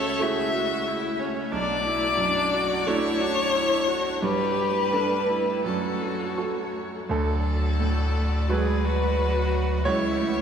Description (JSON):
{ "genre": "neoclassical piano and strings", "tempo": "81-93 BPM", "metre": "4/4", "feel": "rubato", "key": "unclear", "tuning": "A4 = 440 Hz", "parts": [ { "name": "clear violin", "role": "melody", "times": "0.0-10.4 s", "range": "A4 to E5", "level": "-26 LUFS", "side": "left 3 dB", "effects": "none" }, { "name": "bright grand piano", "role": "accompaniment", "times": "0.0-10.4 s", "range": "B1 to C#5", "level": "-29 LUFS", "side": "right 3 dB", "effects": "none" }, { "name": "clear viola", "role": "accompaniment", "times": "0.0-10.4 s", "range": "C#4 to A4", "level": "-30 LUFS", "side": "right 2 dB", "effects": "none" }, { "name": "rich studio string section", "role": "sustained chords", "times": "0.0-10.4 s", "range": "F#3 to E5", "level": "-35 LUFS", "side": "left 1 dB", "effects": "none" }, { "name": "rich cello", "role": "second line", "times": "7.1-10.4 s", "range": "F#3 to A3", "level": "-33 LUFS", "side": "right 5 dB", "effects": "none" }, { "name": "punchy sub bass", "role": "bass", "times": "7.1-10.4 s", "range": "C#2 to D2", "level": "-25 LUFS", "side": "equal", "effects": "none" } ], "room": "wet church reverb, RT60 3.7 s", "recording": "recorded in a church or concert hall", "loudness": "-22 LUFS", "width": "side -7 dB against mid", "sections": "0.0-7.1 A section; 7.1-10.4 A section", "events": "none", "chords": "0.0 F#m7/C#; 1.5 Bm7; 4.2 Gadd9; 5.7 F#m; 7.1 D; 9.9 F#m7/C#" }